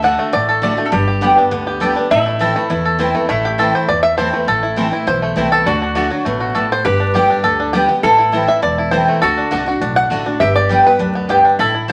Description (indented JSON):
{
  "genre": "bluegrass",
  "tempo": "202 BPM",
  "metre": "4/4",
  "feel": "straight",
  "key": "A dorian",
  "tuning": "A4 = 441 Hz",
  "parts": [
    { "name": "bluegrass banjo", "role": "melody", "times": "0.0-11.9 s", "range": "E3 to F#5", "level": "-19 LUFS", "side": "equal", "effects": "none" },
    { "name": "lap resonator guitar", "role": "second line", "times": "0.0-11.9 s", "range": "E4 to A4", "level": "-23 LUFS", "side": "equal", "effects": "none" },
    { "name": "picked steel-string acoustic guitar", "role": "accompaniment", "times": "0.0-11.9 s", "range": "E2 to G4", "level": "-22 LUFS", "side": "equal", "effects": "none" },
    { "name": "mandolin", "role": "stabs", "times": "0.0-11.9 s", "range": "A3 to A5", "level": "-19 LUFS", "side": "equal", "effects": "none" },
    { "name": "upright bass", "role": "bass", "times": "0.0-11.9 s", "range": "E1 to E2", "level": "-26 LUFS", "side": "equal", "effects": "none" }
  ],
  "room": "wet studio reverb, RT60 0.8 s",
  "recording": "vinyl crackle",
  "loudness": "-15 LUFS",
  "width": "mono",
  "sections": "0.0-3.3 A section; 3.3-11.9 A section",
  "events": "five-string banjo solo 0.0-11.9",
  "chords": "0.0 D; 0.9 G; 2.1 Am; 5.7 D; 6.8 G; 8.0 Am; 9.2 D; 10.4 G"
}